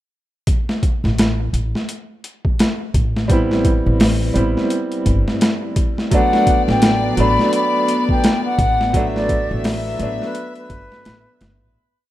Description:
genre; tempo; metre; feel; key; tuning
trip hop; 85 BPM; 4/4; swing 59% on 16ths; A dorian; A4 = 440 Hz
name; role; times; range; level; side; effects
boom bap sampler-style drum kit; drums; 0.5-11.6 s; hi-hat, kick drum, snare drum; -18 LUFS; equal; overdrive
upright bass; bass; 1.0-11.7 s; G1 to A1; -20 LUFS; equal; none
bright upright piano; accompaniment; 3.3-11.8 s; F#3 to E4; -21 LUFS; right 2 dB; tremolo, tape echo
mellow silver concert flute; melody; 6.1-11.7 s; B4 to B5; -20 LUFS; left 2 dB; tape echo
rich chamber string section; sustained chords; 6.1-11.7 s; B3 to E5; -23 LUFS; left 2 dB; none
room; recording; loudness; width
little or no reverb; rough home demo mix; -15 LUFS; side -14 dB against mid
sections
0.5-11.8 groove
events
fade-out 8.0-11.8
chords
0.5 Am7; 6.1 Gmaj7/A (rootless)

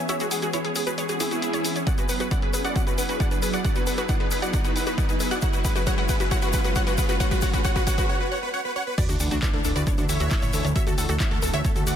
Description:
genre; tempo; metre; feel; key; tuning
uplifting trance; 135 BPM; 4/4; straight; unclear; A4 = 441 Hz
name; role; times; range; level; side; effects
lush unison pad; sustained chords; 0.0-11.9 s; D3 to G#4; -31 LUFS; equal; chorus, phaser, sidechain pumping
riser and sub drop; sound effects; 0.0-10.8 s; none; -34 LUFS; right 1 dB; none
dense compressed supersaw; melody; 0.1-12.0 s; D4 to F#5; -29 LUFS; equal; sidechain pumping, low-pass filter, ping-pong delay
wide unison pluck; second line; 0.1-12.0 s; D4 to F#5; -34 LUFS; equal; sidechain pumping, ping-pong delay
analog pluck; arpeggios; 0.1-11.9 s; E4 to F#5; -32 LUFS; left 2 dB; chorus, sidechain pumping, ping-pong delay
punchy analog drum machine; drums; 0.1-12.0 s; crash cymbal, handclaps, hi-hat; -34 LUFS; left 1 dB; sidechain pumping on hats, sidechain pumping on cymbals
tube shaker; percussion; 0.1-12.0 s; none; -36 LUFS; left 6 dB; none
electronic kick drum; drums; 1.9-11.7 s; none; -24 LUFS; equal; none
fat analog bass; bass; 9.1-12.0 s; D1 to D2; -27 LUFS; equal; sidechain pumping
room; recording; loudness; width
light reverb, digital ambience; dense, heavily limited modern master; -21 LUFS; side -9 dB against mid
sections
0.0-9.0 A section; 9.0-12.0 B section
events
build-up 0.0-9.0; riser 0.0-8.1; filter sweep on synth pluck 0.0-9.0; drum fill 1.9-8.1; break 8.1-9.0; drop 9.0-12.0; impact 9.0-10.8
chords
0.0 C#m7; 1.9 Eadd9; 5.4 F#sus2; 9.0 Dsus2

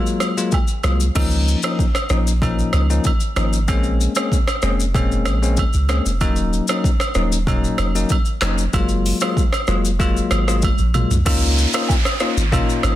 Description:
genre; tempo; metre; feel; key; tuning
afrobeats; 95 BPM; 4/4; straight; Db major; A4 = 440 Hz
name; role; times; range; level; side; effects
bell-like tine electric piano; accompaniment; 0.0-13.0 s; F3 to F4; -22 LUFS; left 4 dB; none
afro-pop drum kit; drums; 0.1-13.0 s; crash cymbal, handclaps, hi-hat, kick drum, rim click, shaker, toms; -20 LUFS; equal; overdrive
agogo bells and woodblock; percussion; 0.2-13.0 s; none; -28 LUFS; right 5 dB; none
punchy sub bass; bass; 0.8-13.0 s; Eb1 to Db2; -19 LUFS; equal; none
downlifter; sound effects; 11.3-13.0 s; none; -24 LUFS; right 3 dB; none
room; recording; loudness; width
little or no reverb; dense, heavily limited modern master; -16 LUFS; side -13 dB against mid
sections
0.0-1.2 A section; 1.2-11.3 B section; 11.3-13.0 C section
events
drum fill 10.6-11.3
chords
0.0 Gbmaj9; 1.2 Db69; 3.7 Bbm9; 6.2 Ebm7; 8.7 Gbmaj9; 11.3 Db69

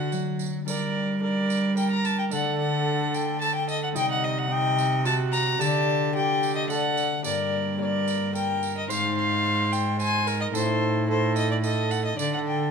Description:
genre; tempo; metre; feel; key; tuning
classical, renaissance-style consort dance; 110 BPM; 3/4; straight; G harmonic minor; A4 = 441 Hz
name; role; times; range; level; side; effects
rich violin; melody; 0.0-12.7 s; C5 to Bb5; -27 LUFS; left 3 dB; none
warm viola; second line; 0.0-12.7 s; Eb4 to C5; -30 LUFS; right 9 dB; none
concert harp; accompaniment; 0.0-12.7 s; G2 to Eb5; -30 LUFS; left 9 dB; none
rich cello; bass; 0.0-12.7 s; G2 to G3; -28 LUFS; right 2 dB; none
tambourine; percussion; 0.1-12.4 s; none; -38 LUFS; right 10 dB; none
room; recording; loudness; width
moderate stone room reverb, RT60 1.3 s; none; -22 LUFS; side -6 dB against mid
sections
0.7-12.7 A section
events
none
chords
0.0 D; 0.7 Gm; 2.3 D; 4.0 Cm; 5.6 Dsus4; 6.7 D; 7.3 Gm; 8.9 Ab; 10.5 Adim; 12.2 Dsus4

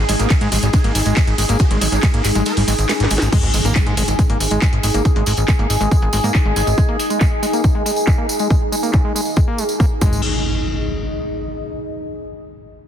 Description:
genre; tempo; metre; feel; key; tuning
psychedelic trance; 139 BPM; 4/4; straight; unclear; A4 = 442 Hz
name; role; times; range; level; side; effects
swarming rave lead; melody; 0.0-2.7 s; G#3 to A#4; -26 LUFS; equal; chorus, phaser, sidechain pumping, tape echo
bubbling stepped-filter texture; sustained chords; 0.0-10.0 s; G#4; -25 LUFS; right 1 dB; chorus, built-in reverb, sidechain pumping
plucky analog bass; bass; 0.0-6.7, 10.0-10.2 s; G#1 to G#2; -19 LUFS; equal; none
deep dark ambient pad; texture; 0.0-11.9 s; D#4 to G#5; -25 LUFS; left 1 dB; chorus, built-in reverb, sidechain pumping
overdriven acid bass; riff; 0.1-10.2 s; G#3 to A#3; -26 LUFS; moving between left 4 dB and right 3 dB; distortion, auto-pan, sidechain pumping, ping-pong delay
drum and bass drum kit; drums; 0.1-10.1 s; crash cymbal, handclaps, hi-hat, ride cymbal, snare drum; -24 LUFS; equal; low-pass filter on snare, low-pass filter on hats, low-pass filter on cymbals, low-pass filter on room
tambourine; percussion; 0.1-10.2 s; none; -27 LUFS; right 3 dB; none
electronic kick drum; drums; 0.3-10.1 s; none; -15 LUFS; equal; none
impact; sound effects; 3.3-5.1, 10.1-11.7 s; none; -26 LUFS; equal; none
room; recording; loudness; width
light reverb, digital ambience; dense, heavily limited modern master; -14 LUFS; side -9 dB against mid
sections
0.0-3.3 A section; 3.3-10.2 B section; 10.2-12.0 C section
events
drop 0.0-3.3; kick drops out 2.5-3.3; drum fill 2.9-3.3; impact 3.3-5.1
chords
0.0 G#5

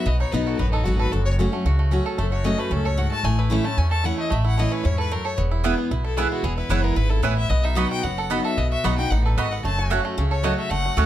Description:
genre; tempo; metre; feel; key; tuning
bluegrass; 226 BPM; 4/4; straight; E major; A4 = 440 Hz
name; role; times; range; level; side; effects
bluegrass banjo; melody; 0.0-11.1 s; A3 to A4; -30 LUFS; right 5 dB; none
clear fiddle; melody; 0.0-11.1 s; D#4 to A5; -28 LUFS; left 4 dB; none
picked steel-string acoustic guitar; accompaniment; 0.0-11.1 s; E2 to F#4; -26 LUFS; left 1 dB; none
upright bass; bass; 0.1-11.1 s; E1 to E2; -22 LUFS; equal; none
mandolin; stabs; 5.6-11.1 s; A3 to B5; -25 LUFS; right 6 dB; none
room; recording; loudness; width
little or no reverb; none; -20 LUFS; side -12 dB against mid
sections
0.0-11.1 A section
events
none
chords
0.0 B; 1.1 F#m; 3.2 A; 5.4 E; 7.5 B; 9.6 F#m

